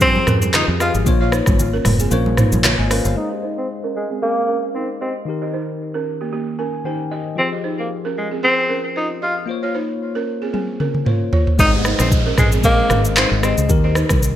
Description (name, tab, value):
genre	afrobeats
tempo	114 BPM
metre	4/4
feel	swing 55% on 16ths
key	Ab major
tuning	A4 = 440 Hz
part	breathy tenor saxophone	melody	0.0-13.6 s	Ab3 to F4	-20 LUFS	equal	low-pass filter, digital delay
part	bell-like tine electric piano	accompaniment	0.0-14.4 s	Eb3 to Ab5	-24 LUFS	left 5 dB	wide subtle chorus, low-pass filter
part	balafon	riff	0.0-14.1 s	Bb3 to Eb5	-25 LUFS	right 5 dB	low-pass filter, digital delay
part	fingered electric bass	bass	0.0-3.1, 11.6-14.4 s	F1 to G2	-20 LUFS	equal	none
part	afro-pop drum kit	drums	0.0-3.2, 10.5-14.4 s	handclaps, hi-hat, kick drum, rim click, shaker, toms	-17 LUFS	equal	gated reverb
part	congas	percussion	0.2-2.8 s	none	-26 LUFS	right 2 dB	none
part	downlifter	sound effects	11.6-14.4 s	none	-27 LUFS	right 2 dB	none
room	moderate plate reverb, RT60 1.8 s, digital ambience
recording	bright 1980s-style digital production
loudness	-16 LUFS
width	side -11 dB against mid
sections	0.0-3.2 A section; 3.2-11.6 B section; 11.6-14.4 A section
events	kick muted 2.1-3.2; filter sweep 3.2-11.6; tine electric piano fill 6.3-7.4; drum fill 10.5-11.6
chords	0.0 Fmadd9; 1.1 Bbmadd9; 3.2 Ab; 5.3 Eb; 7.4 Fmadd9; 9.5 Bbmadd9; 11.6 Ab; 13.7 Eb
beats	0.01 0.54 | 1.06 1.59 2.12 2.64 | 3.17 3.70 4.22 4.75 | 5.28 5.80 6.33 6.85 | 7.38 7.91 8.43 8.96 | 9.48 10.01 10.54 11.06 | 11.59 12.12 12.64 13.17 | 13.70 14.22